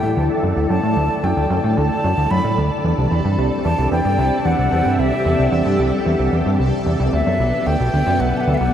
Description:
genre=ambient, sequencer-driven space music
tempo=112 BPM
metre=4/4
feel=straight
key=unclear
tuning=A4 = 439 Hz
part: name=breathy wooden flute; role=melody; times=0.0-8.7 s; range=E5 to B5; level=-22 LUFS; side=left 1 dB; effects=tape echo
part: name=string machine, full ensemble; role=sustained chords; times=0.0-8.7 s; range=F#3 to E5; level=-21 LUFS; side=equal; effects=ensemble chorus
part: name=plucky analog bass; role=riff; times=0.0-8.7 s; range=B1 to A2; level=-18 LUFS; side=equal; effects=lush chorus, tape echo
part: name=bubbling stepped-filter texture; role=texture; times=0.0-8.7 s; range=A4 to A5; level=-33 LUFS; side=right 1 dB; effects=chorus, built-in reverb
room=wet huge ambient reverb, RT60 8.9 s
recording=dark, warm production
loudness=-15 LUFS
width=side -9 dB against mid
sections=0.0-8.7 A section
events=none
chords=0.0 Dsus2; 2.8 C; 7.1 Bm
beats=0.16 | 0.70 1.24 1.77 2.31 | 2.84 3.38 3.91 4.45 | 4.99 5.52 6.06 6.59 | 7.13 7.66 8.20

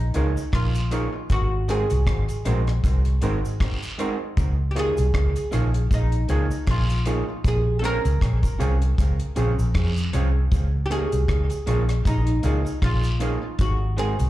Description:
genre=lovers rock reggae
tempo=78 BPM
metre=4/4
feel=swing 57% on 16ths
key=Db major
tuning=A4 = 440 Hz
part: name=oud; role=melody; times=0.0-14.3 s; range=Eb4 to Bb4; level=-29 LUFS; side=right 1 dB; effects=tape echo, slapback echo
part: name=vintage muted fingered electric bass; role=bass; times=0.0-14.3 s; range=Ab1 to F2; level=-21 LUFS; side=equal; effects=none
part: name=electric guitar through a small old amp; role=stabs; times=0.1-14.1 s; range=Ab3 to Db5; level=-32 LUFS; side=right 4 dB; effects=tape echo, slapback echo
part: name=deep reggae drum kit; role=drums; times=0.1-14.3 s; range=hi-hat, kick drum, rim click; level=-24 LUFS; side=equal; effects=tape echo
part: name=cabasa and guiro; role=percussion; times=0.1-14.3 s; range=none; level=-40 LUFS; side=right 2 dB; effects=slapback echo
part: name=clear concert grand piano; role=accompaniment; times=0.2-14.1 s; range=Bb3 to Bb4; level=-32 LUFS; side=equal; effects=tape echo, slapback echo
room=light reverb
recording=live gig heard through the venue's PA, club reverb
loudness=-20 LUFS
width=side -15 dB against mid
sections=0.0-14.3 A section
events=none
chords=0.0 Db69; 1.3 Ab7; 4.4 Db69; 7.4 Bbm7; 10.5 Db69; 13.6 Ab7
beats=0.53 | 1.30 2.07 2.84 3.60 | 4.37 5.14 5.91 6.68 | 7.45 8.21 8.98 9.75 | 10.52 11.29 12.05 12.82 | 13.59

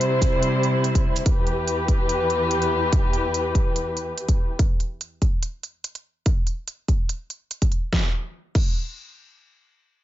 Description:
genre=heavy wobble dubstep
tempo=144 BPM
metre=4/4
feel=half-time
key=E minor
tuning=A4 = 440 Hz
part: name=muted chamber string section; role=sustained chords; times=0.0-4.6 s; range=E2 to C5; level=-22 LUFS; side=left 1 dB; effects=sidechain pumping
part: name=dubstep drum kit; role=drums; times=0.0-8.7 s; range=crash cymbal, hi-hat, shaker, snare drum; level=-30 LUFS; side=right 2 dB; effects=none
part: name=electronic kick drum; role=drums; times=0.2-8.7 s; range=none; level=-21 LUFS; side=equal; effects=none
room=digital ambience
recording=nothing above 7.6 kHz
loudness=-20 LUFS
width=side -14 dB against mid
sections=0.0-7.9 A section; 7.9-10.0 B section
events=none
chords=0.0 C; 1.3 Em; 4.6 N.C.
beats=0.01 0.43 0.84 | 1.26 1.68 2.09 2.51 | 2.93 3.34 3.76 4.18 | 4.59 5.01 5.43 5.84 | 6.26 6.68 7.09 7.51 | 7.93 8.34

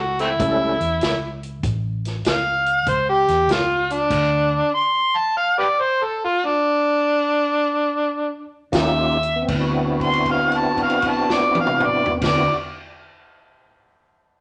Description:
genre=electric blues shuffle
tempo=78-97 BPM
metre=4/4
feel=swing 67% on 8ths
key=D mixolydian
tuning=A4 = 440 Hz
part: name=overdriven harmonica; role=melody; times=0.0-12.5 s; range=A3 to C6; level=-21 LUFS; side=equal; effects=none
part: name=vintage muted fingered electric bass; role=bass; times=0.0-4.6, 8.7-12.5 s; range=A1 to E2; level=-29 LUFS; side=equal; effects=none
part: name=vintage drum kit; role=drums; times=0.2-4.3, 8.7-12.4 s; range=crash cymbal, hi-hat, kick drum, snare drum, toms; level=-28 LUFS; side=equal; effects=none
part: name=tonewheel organ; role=accompaniment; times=0.4-0.8, 8.7-12.6 s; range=G3 to A4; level=-24 LUFS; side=equal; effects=slow rotary speaker, overdrive, chorus vibrato
room=moderate large studio reverb, RT60 1.0 s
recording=nothing above 10.9 kHz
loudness=-20 LUFS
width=mono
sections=0.0-9.5 A section; 9.5-12.6 B section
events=slowing down 4.1-9.5; held note 9.5-12.1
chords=0.0 A7; 4.1 N.C.; 8.7 Eb9; 9.5 D13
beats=0.39 1.01 | 1.63 2.25 2.87 3.48 | 4.10 4.72 5.35 5.99 | 6.64 7.32 8.01 8.73 | 9.49 10.26 11.03 11.81

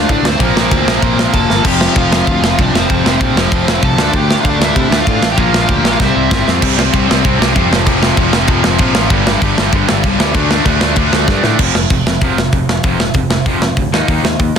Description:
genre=punk rock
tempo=193 BPM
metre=4/4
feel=straight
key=F major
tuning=A4 = 441 Hz
part: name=smooth overdriven lead guitar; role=melody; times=0.0-6.5 s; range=C4 to A5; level=-19 LUFS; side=right 1 dB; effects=tape echo
part: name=crunchy overdriven guitar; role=riff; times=0.0-14.6 s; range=F2 to Eb4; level=-19 LUFS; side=left 16 dB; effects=none
part: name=distorted electric guitar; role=riff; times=0.0-14.6 s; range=F2 to Eb4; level=-19 LUFS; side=right 11 dB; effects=distortion
part: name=heavy high-gain guitar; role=riff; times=0.0-11.6 s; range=F2 to D4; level=-19 LUFS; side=right 3 dB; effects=distortion
part: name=picked electric bass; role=bass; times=0.0-14.6 s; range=F1 to C3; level=-18 LUFS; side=equal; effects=none
part: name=tight metal drum kit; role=drums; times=0.1-14.6 s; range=crash cymbal, hi-hat, kick drum, ride cymbal, snare drum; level=-14 LUFS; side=equal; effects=none
room=little or no reverb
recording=dense, heavily limited modern master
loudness=-10 LUFS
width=side -7 dB against mid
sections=0.0-6.6 A section; 6.6-11.6 B section; 11.6-14.6 C section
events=drum fill 1.5, 6.0-6.6, 11.3-11.6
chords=0.4 F; 4.0 Dm; 5.4 Bb; 6.0 C; 6.6 C5; 7.7 F5; 9.1 G5; 10.4 D5; 11.6 F5; 13.9 Eb5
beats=0.09 | 0.40 0.71 1.03 1.34 | 1.65 1.96 2.27 2.59 | 2.90 3.21 3.52 3.83 | 4.14 4.45 4.76 5.07 | 5.38 5.70 6.01 6.32 | 6.63 6.94 7.25 7.56 | 7.87 8.18 8.49 8.80 | 9.11 9.42 9.73 10.04 | 10.35 10.66 10.97 11.28 | 11.60 11.91 12.22 12.53 | 12.84 13.15 13.47 13.78 | 14.09 14.40

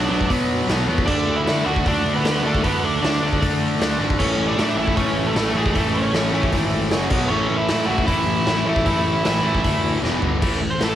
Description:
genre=punk rock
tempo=154 BPM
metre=4/4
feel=straight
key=A major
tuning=A4 = 440 Hz
part: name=nasal lead guitar with a parked wah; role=melody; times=0.0-10.9 s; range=G#3 to F#5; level=-24 LUFS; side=right 1 dB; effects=overdrive, cassette tape, analog delay
part: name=distorted electric guitar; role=riff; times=0.0-11.0 s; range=E2 to D4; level=-24 LUFS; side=left 8 dB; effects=distortion
part: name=distorted electric guitar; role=riff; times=0.0-11.0 s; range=E2 to D4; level=-25 LUFS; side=right 8 dB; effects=overdrive
part: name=fuzz picked electric bass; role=bass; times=0.0-10.9 s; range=E1 to D3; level=-25 LUFS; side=equal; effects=overdrive
part: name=raw garage drum kit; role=drums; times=0.2-10.9 s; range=crash cymbal, hi-hat, kick drum, snare drum, toms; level=-24 LUFS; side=equal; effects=cassette tape
room=studio reverb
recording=home recording on cassette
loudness=-17 LUFS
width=side -11 dB against mid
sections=0.0-10.4 A section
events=drum fill 10.0-10.4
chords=0.0 Bm; 1.1 D5; 4.2 A; 6.9 F#5; 7.1 B5; 7.3 A; 10.0 E5; 10.2 G5; 10.4 A5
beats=0.30 0.69 | 1.08 1.47 1.86 2.25 | 2.63 3.02 3.41 3.80 | 4.19 4.58 4.97 5.36 | 5.75 6.13 6.52 6.91 | 7.30 7.69 8.08 8.47 | 8.86 9.24 9.63 10.02 | 10.41 10.80

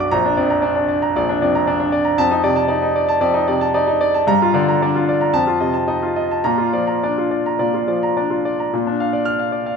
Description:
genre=classical, virtuoso piano study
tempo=104-119 BPM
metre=4/4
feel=rubato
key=Bb major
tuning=A4 = 440 Hz
part: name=clear concert grand piano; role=solo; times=0.0-9.8 s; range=Bb1 to F6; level=-16 LUFS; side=equal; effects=none
room=moderate recital hall reverb, RT60 1.4 s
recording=minimal, uncompressed stereo recording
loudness=-15 LUFS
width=side -6 dB against mid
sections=0.0-8.7 A section; 8.7-9.8 B section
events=none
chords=0.1 Bb; 2.2 F6; 4.3 Gm7; 5.3 F7; 6.4 Bb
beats=| 0.12 0.63 1.15 1.67 | 2.19 2.71 3.22 3.75 | 4.27 4.80 5.32 5.87 | 6.43 7.01 7.58 8.16 | 8.72 9.26

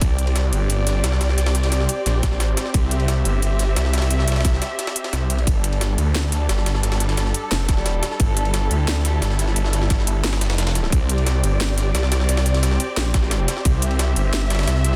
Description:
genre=dark technical drum and bass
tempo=176 BPM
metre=4/4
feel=straight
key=unclear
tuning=A4 = 440 Hz
part: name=muted studio string section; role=sustained chords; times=0.0-15.0 s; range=G3 to E5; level=-30 LUFS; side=equal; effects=sidechain pumping
part: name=snarling distorted saw bass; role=bass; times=0.0-15.0 s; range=F1 to D2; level=-22 LUFS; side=equal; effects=distortion, tube saturation
part: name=drum and bass drum kit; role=drums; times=0.0-14.9 s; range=hi-hat, snare drum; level=-28 LUFS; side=equal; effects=none
part: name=electronic kick drum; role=drums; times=0.0-0.1, 2.2-5.5, 7.7-11.0, 13.1-13.7 s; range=none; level=-21 LUFS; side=equal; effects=none
part: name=jungle sampler-style drum kit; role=drums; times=0.0-15.0 s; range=ride cymbal, snare drum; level=-31 LUFS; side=equal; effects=high-pass filter on cymbals, high-pass filter on snare, high-pass filter on room
room=digital ambience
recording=dense, heavily limited modern master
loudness=-20 LUFS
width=mono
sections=0.0-15.0 A section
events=break 4.8-5.5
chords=0.0 C; 5.5 G5; 10.9 C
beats=| 0.02 0.36 0.70 1.04 | 1.38 1.72 2.06 2.40 | 2.74 3.08 3.42 3.77 | 4.11 4.45 4.79 5.13 | 5.47 5.81 6.15 6.49 | 6.83 7.17 7.52 7.86 | 8.20 8.54 8.88 9.22 | 9.56 9.90 10.24 10.58 | 10.93 11.27 11.61 11.95 | 12.29 12.63 12.97 13.31 | 13.65 13.99 14.33 14.68

